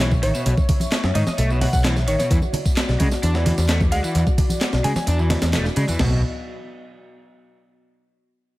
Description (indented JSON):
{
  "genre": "breakbeat, breaks",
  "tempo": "130 BPM",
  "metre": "4/4",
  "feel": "straight",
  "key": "unclear",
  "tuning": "A4 = 440 Hz",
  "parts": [
    { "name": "dark analog pad", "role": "sustained chords", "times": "0.0-6.2 s", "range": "B3 to E5", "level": "-31 LUFS", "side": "left 1 dB", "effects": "chorus, vintage 12-bit sampler grit, sidechain pumping" },
    { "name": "overdriven semi-hollow guitar", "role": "riff", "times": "0.0-6.2 s", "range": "B2 to D4", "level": "-27 LUFS", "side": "equal", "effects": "vintage 12-bit sampler grit, digital delay" },
    { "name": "modern bright picked electric bass", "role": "bass", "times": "0.0-6.2 s", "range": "E1 to C#3", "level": "-20 LUFS", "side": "equal", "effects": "tube saturation" },
    { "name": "breakbeat sampler-style drum kit", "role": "drums", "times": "0.0-6.1 s", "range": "crash cymbal, hi-hat, kick drum, snare drum, toms", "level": "-22 LUFS", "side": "equal", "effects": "studio reverb" },
    { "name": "punchy analog drum machine", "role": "drums", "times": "0.0-6.0 s", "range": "handclaps, ride cymbal, tambourine", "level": "-31 LUFS", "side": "right 1 dB", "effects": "studio reverb" },
    { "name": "congas", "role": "percussion", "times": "0.1-6.0 s", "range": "none", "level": "-26 LUFS", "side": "right 1 dB", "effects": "none" },
    { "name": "glassy wavetable pluck", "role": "melody", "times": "0.2-5.0 s", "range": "C#5 to G#5", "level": "-28 LUFS", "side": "equal", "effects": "chorus, telephone sound, digital delay" }
  ],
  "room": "little or no reverb",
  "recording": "none",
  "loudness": "-17 LUFS",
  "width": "side -18 dB against mid",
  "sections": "0.0-6.0 A section; 6.0-7.8 B section",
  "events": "drop 0.0-6.0",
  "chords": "0.0 Bsus4; 2.3 E7sus2; 6.0 B",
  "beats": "0.00 | 0.46 0.92 1.38 1.84 | 2.31 2.77 3.23 3.69 | 4.15 4.61 5.07 5.54 | 6.00"
}